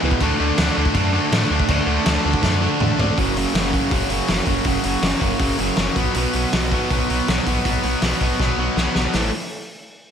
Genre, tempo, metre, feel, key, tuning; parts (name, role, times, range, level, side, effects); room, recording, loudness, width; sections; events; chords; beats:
punk rock; 161 BPM; 4/4; straight; A4 = 440 Hz
distorted electric guitar; riff; 0.0-9.3 s; E2 to D4; -23 LUFS; left 10 dB; overdrive
distorted electric guitar; riff; 0.0-9.3 s; E2 to D4; -23 LUFS; right 9 dB; distortion, slapback echo
sub bass with octave; bass; 0.0-9.3 s; F#1 to A2; -24 LUFS; equal
loose indie drum kit; drums; 0.1-9.2 s; crash cymbal, hi-hat, kick drum, snare drum, toms; -22 LUFS; equal
moderate lush hall reverb, RT60 1.7 s, small room ambience; big arena sound; -17 LUFS; side -8 dB against mid
0.0-3.2 A section; 3.2-9.1 B section
drum fill 2.4-3.2, 8.4-9.1
0.2 D; 3.2 F#5; 6.0 B5; 9.1 A5
| 0.21 0.58 0.95 1.32 | 1.69 2.06 2.43 2.80 | 3.17 3.54 3.91 4.29 | 4.66 5.03 5.40 5.78 | 6.15 6.52 6.90 7.27 | 7.64 8.02 8.39 8.77 | 9.14